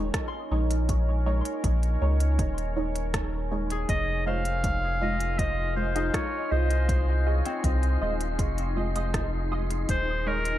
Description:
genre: ambient dub.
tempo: 80 BPM.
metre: 4/4.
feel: straight.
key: F minor.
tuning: A4 = 440 Hz.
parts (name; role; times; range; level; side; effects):
deep dark ambient pad; sustained chords; 0.0-10.6 s; Eb4 to Ab5; -35 LUFS; equal; chorus, built-in reverb.
concert harp; arpeggios; 0.0-10.5 s; C4 to C6; -40 LUFS; left 5 dB; dub echo.
filtered dub chord stab; stabs; 0.0-10.4 s; Ab3 to Eb5; -35 LUFS; right 2 dB; phaser, ensemble chorus, dub echo.
soft dub sub bass; bass; 0.0-10.6 s; Eb1 to Db2; -26 LUFS; equal; none.
electronic kick drum; drums; 0.1-10.0 s; none; -30 LUFS; equal; none.
organic electronic drum kit; drums; 0.1-10.6 s; hi-hat, rim click; -35 LUFS; equal; none.
bright clarinet; melody; 3.9-10.6 s; Bb4 to F5; -31 LUFS; equal; dub echo.
wind-like tuned noise texture; texture; 4.5-10.6 s; Eb4 to C6; -39 LUFS; left 4 dB; built-in reverb.
room: light reverb, digital ambience.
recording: none.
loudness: -24 LUFS.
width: side -13 dB against mid.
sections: 0.0-10.6 A section.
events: none.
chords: 0.0 Eb7sus4; 3.9 Fm7; 9.9 Eb7sus4.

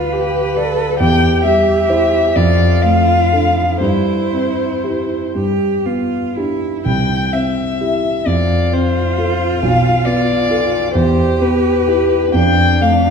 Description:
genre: classical, slow romantic movement for piano trio.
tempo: 38-46 BPM (dotted quarters).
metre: 6/8.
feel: rubato.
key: C major.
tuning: A4 = 440 Hz.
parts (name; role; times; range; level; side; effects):
rich violin; melody; 0.0-13.1 s; B4 to G5; -17 LUFS; left 4 dB; none.
rich cello; second line; 0.0-13.1 s; D4 to A4; -20 LUFS; right 3 dB; none.
warm concert grand piano; accompaniment; 0.0-13.1 s; B1 to F5; -16 LUFS; equal; none.
room: wet recital hall reverb, RT60 1.7 s.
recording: heard from further back in the room.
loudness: -13 LUFS.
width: side -6 dB against mid.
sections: 0.0-13.1 A section.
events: none.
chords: 0.0 G7/D; 1.0 C/E; 2.4 Dm/F; 3.8 C/G; 5.4 G; 6.9 C; 8.3 F; 9.6 Bm7b5; 11.0 Em; 12.3 F6.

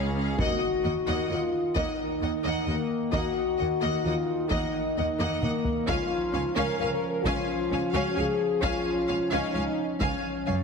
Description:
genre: cinematic, epic orchestral film score.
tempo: 131 BPM.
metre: 3/4.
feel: straight.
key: Eb minor.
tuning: A4 = 441 Hz.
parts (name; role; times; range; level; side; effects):
rich symphonic violin section; melody; 0.0-10.5 s; F5 to Ab5; -39 LUFS; left 2 dB; none.
warm symphonic violin section; second line; 0.0-10.5 s; Ab4 to F5; -34 LUFS; left 1 dB; none.
rich studio viola section; accompaniment; 0.0-10.6 s; Bb3 to Db4; -35 LUFS; equal; none.
mellow French horn section; sustained chords; 0.0-10.6 s; Ab3 to Bb4; -28 LUFS; left 3 dB; none.
rich chamber double bass section; bass; 0.0-10.6 s; Db2 to Eb2; -36 LUFS; right 3 dB; none.
rich symphonic cello section; bass; 0.0-10.6 s; Db2 to Gb2; -35 LUFS; right 2 dB; none.
clear trombone section; sustained chords; 0.4-10.6 s; Eb3 to Eb4; -35 LUFS; right 2 dB; none.
solo taiko drums; drums; 0.4-10.4 s; none; -34 LUFS; equal; none.
impact; sound effects; 0.4-1.8 s; none; -38 LUFS; equal; none.
room: wet scoring stage reverb, RT60 1.7 s.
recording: heavily compressed radio sound, multiband compression.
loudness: -25 LUFS.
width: side -5 dB against mid.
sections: 0.4-10.6 A section.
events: impact 0.4-1.8; drum fill 5.2-5.9.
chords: 0.4 Ebm; 5.9 Db.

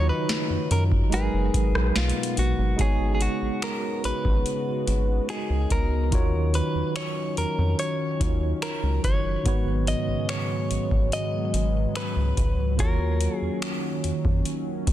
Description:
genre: contemporary R&B.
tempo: 72 BPM.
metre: 4/4.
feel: straight.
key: G# dorian.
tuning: A4 = 440 Hz.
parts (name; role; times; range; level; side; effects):
direct-recorded clean electric guitar; melody; 0.0-13.6 s; E#4 to D#5; -30 LUFS; left 1 dB; ping-pong delay.
tine electric piano; accompaniment; 0.0-14.9 s; G#2 to D#5; -30 LUFS; right 2 dB; fast stereo tremolo.
warm analog pad; sustained chords; 0.0-14.9 s; B2 to F#4; -32 LUFS; equal; chorus.
rubbery square bass; bass; 0.0-14.9 s; F#1 to F#2; -25 LUFS; equal; none.
booming analog drum machine; drums; 0.3-14.9 s; finger snaps, hi-hat, kick drum, rim click, snare drum; -26 LUFS; equal; vintage 12-bit sampler grit, soft clipping on snare.
room: little or no reverb.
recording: dense, heavily limited modern master, faint mains hum.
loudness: -22 LUFS.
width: side -13 dB against mid.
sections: 0.0-2.8 A section; 2.8-14.9 B section.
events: none.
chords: 0.0 D#m7; 1.1 G#m9; 2.8 G#m11; 6.1 D#m7; 9.5 G#m11; 12.8 D#m7.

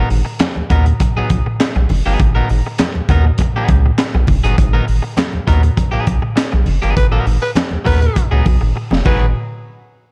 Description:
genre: funk.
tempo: 100 BPM.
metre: 4/4.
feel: straight.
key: G# minor.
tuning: A4 = 439 Hz.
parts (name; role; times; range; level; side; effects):
electric guitar at the edge of break-up; accompaniment; 0.0-9.2 s; F#3 to A#4; -25 LUFS; equal; spring reverb.
round analog bass; bass; 0.0-9.3 s; E#1 to D#2; -17 LUFS; equal; none.
crunchy breakbeat drum kit; drums; 0.1-9.2 s; crash cymbal, handclaps, hi-hat, kick drum, snare drum; -19 LUFS; equal; none.
congas; percussion; 0.4-9.3 s; none; -26 LUFS; equal; none.
growling tenor saxophone; second line; 7.0-9.3 s; B4; -25 LUFS; equal; none.
room: small room ambience.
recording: dark, warm production.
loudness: -15 LUFS.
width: mono.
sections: 0.0-9.4 A section.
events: band accent 7.0-9.4; drum fill 8.8-9.4.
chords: 0.0 G#m7; 9.4 N.C..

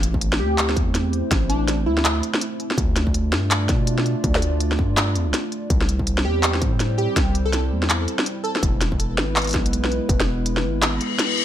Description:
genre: half-time drum and bass.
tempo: 164 BPM.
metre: 4/4.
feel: swing 60% on 16ths, half-time.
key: A minor.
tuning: A4 = 440 Hz.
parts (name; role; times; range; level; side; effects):
dark analog pad; sustained chords; 0.0-11.4 s; G3 to D5; -27 LUFS; right 1 dB; chorus, sidechain pumping.
long sustained 808-style bass; bass; 0.0-11.0 s; E1 to B2; -23 LUFS; equal; none.
industrial drum kit; drums; 0.0-11.4 s; handclaps, hi-hat, snare drum; -23 LUFS; equal; studio reverb.
electronic kick drum; drums; 0.1-10.2 s; none; -23 LUFS; equal; distortion, studio reverb.
plucky unison lead; melody; 0.4-2.2, 6.2-8.6 s; D4 to A4; -27 LUFS; equal; analog chorus, digital delay.
reverse cymbal; sound effects; 11.0-11.4 s; none; -22 LUFS; left 8 dB; none.
room: light reverb.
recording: none.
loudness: -18 LUFS.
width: side -11 dB against mid.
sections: 0.0-11.4 A section.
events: reverse cymbal 11.0-11.4.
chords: 0.0 Am; 2.8 Dm; 5.7 C; 8.6 E.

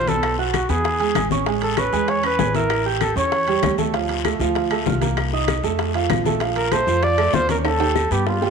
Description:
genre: Afro-Cuban jazz.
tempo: 194 BPM.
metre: 4/4.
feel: straight.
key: unclear.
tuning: A4 = 439 Hz.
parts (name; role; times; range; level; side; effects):
dark trumpet; melody; 0.0-3.7, 6.6-8.5 s; F4 to D5; -21 LUFS; equal; none.
warm upright piano; accompaniment; 0.0-8.5 s; F3 to G#6; -23 LUFS; right 9 dB; none.
upright bass; bass; 0.0-8.5 s; A1 to G2; -25 LUFS; left 2 dB; none.
bongos; percussion; 0.1-8.5 s; none; -28 LUFS; left 13 dB; none.
congas; percussion; 0.1-8.5 s; none; -28 LUFS; left 13 dB; none.
guiro; percussion; 0.1-8.5 s; none; -33 LUFS; left 15 dB; none.
timbales; percussion; 0.1-8.5 s; none; -31 LUFS; right 10 dB; none.
claves; percussion; 0.2-8.1 s; none; -34 LUFS; left 16 dB; none.
room: moderate echo chamber reverb, RT60 1.8 s.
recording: 1960s-style stereo with parts hard left and right.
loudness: -18 LUFS.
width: side -6 dB against mid.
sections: 0.0-8.5 A section.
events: drum fill 7.6-8.5.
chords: 0.2 B5; 0.8 E; 1.5 Amaj9; 2.7 A7; 3.9 Dm7; 5.2 Cm7; 5.8 F; 6.4 Bbmaj7; 7.6 Eb7.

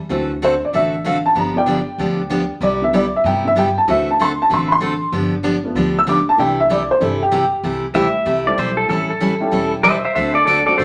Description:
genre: country, western swing.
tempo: 191 BPM.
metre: 4/4.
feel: swing 64% on 8ths.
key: C major.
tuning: A4 = 440 Hz.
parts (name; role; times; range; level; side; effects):
dark upright piano; accompaniment; 0.1-10.8 s; D3 to E6; -19 LUFS; equal; none.
picked steel-string acoustic guitar; accompaniment; 0.1-10.8 s; C3 to A4; -23 LUFS; equal; none.
upright bass; bass; 0.1-10.8 s; E1 to G2; -30 LUFS; equal; none.
pedal steel guitar; second line; 7.9-10.8 s; A4 to E5; -18 LUFS; equal; none.
room: wet studio reverb, RT60 0.7 s.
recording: none.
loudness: -17 LUFS.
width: mono.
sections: 0.0-7.6 A section; 7.6-10.8 A section.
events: upright piano solo 0.0-7.6; pedal steel guitar solo 7.6-10.8.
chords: 0.1 D7; 1.4 G7; 2.6 Cmaj7; 3.9 D7; 5.1 G7; 6.4 C6; 8.9 A7; 10.2 D7.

